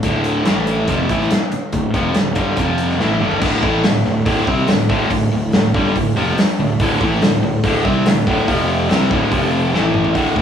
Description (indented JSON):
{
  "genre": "blues rock power trio and southern rock",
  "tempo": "142 BPM",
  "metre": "4/4",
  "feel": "straight",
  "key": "D minor",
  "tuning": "A4 = 439 Hz",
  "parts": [
    { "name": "distorted electric guitar", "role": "riff", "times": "0.0-10.4 s", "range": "D2 to C4", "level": "-17 LUFS", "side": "equal", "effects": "overdrive" },
    { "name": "fuzz fingered electric bass", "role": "bass", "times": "0.0-10.4 s", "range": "D1 to C2", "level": "-22 LUFS", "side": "equal", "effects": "overdrive" },
    { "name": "big rock drum kit", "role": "drums", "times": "0.0-10.4 s", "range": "crash cymbal, hi-hat, kick drum, snare drum, toms", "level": "-19 LUFS", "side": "equal", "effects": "none" }
  ],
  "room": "moderate large studio reverb, RT60 0.9 s",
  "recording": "band playing live in one room, studio reverb",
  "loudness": "-14 LUFS",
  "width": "side -8 dB against mid",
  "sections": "0.0-3.4 A section; 3.4-10.2 B section",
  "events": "drum fill 3.0-3.4, 9.7-10.2",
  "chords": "0.5 A5; 0.9 Dm; 2.6 F5; 3.0 D5; 8.5 F5; 8.9 D5; 9.3 F5; 9.7 A5",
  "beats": "| 0.04 0.46 0.89 1.31 | 1.74 2.16 2.58 3.00 | 3.43 3.85 4.27 4.69 | 5.12 5.54 5.96 6.38 | 6.80 7.22 7.64 8.06 | 8.48 8.90 9.32 9.74 | 10.16"
}